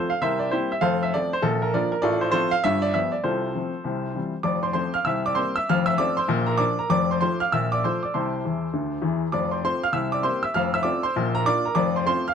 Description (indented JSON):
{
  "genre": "jazz, stride piano",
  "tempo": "198 BPM",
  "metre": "4/4",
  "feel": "swing 64% on 8ths",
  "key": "F major",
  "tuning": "A4 = 440 Hz",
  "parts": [
    { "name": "clear upright piano", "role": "solo", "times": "0.0-12.3 s", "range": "F1 to F6", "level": "-21 LUFS", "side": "equal", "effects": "none" }
  ],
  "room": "light reverb",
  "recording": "close, detailed microphones",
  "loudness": "-21 LUFS",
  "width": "side -7 dB against mid",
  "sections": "0.0-4.5 A section; 4.5-12.3 A section",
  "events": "upright piano fill 8.4-9.3",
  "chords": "0.2 C7; 0.8 F; 1.4 Bb; 2.0 F/A; 2.7 G7; 3.3 F/C; 3.9 C; 4.5 F; 5.1 C7; 5.7 F; 6.3 Bb; 6.9 F; 7.5 Bbmaj7; 8.1 C6; 8.7 C; 9.3 F; 9.9 C7; 10.6 F; 11.2 Bb; 11.8 F"
}